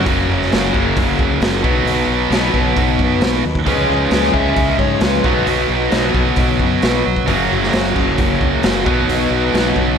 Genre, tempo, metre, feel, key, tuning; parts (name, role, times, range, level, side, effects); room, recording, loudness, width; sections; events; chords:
classic rock; 133 BPM; 4/4; straight; F# major; A4 = 440 Hz
crunchy overdriven guitar; riff; 0.0-10.0 s; F#2 to D#4; -20 LUFS; left 9 dB
tight distorted guitar; riff; 0.0-10.0 s; F#2 to C#4; -18 LUFS; right 9 dB; distortion, slapback echo
fuzz fingered electric bass; bass; 0.0-10.0 s; F#1 to G#2; -22 LUFS; equal; overdrive
picked swing-style acoustic guitar; accompaniment; 0.1-10.0 s; F#2 to B4; -24 LUFS; left 2 dB; slapback echo
raw garage drum kit; drums; 0.1-9.9 s; hi-hat, kick drum, snare drum; -19 LUFS; equal
overdriven slide guitar; second line; 3.7-5.2 s; B4 to E5; -23 LUFS; left 2 dB
moderate lush hall reverb, RT60 1.8 s, small room ambience; big arena sound; -13 LUFS; side -7 dB against mid
0.1-10.0 A section
0.1 F#; 1.6 B; 3.7 C#; 5.2 B; 7.3 F#; 8.9 B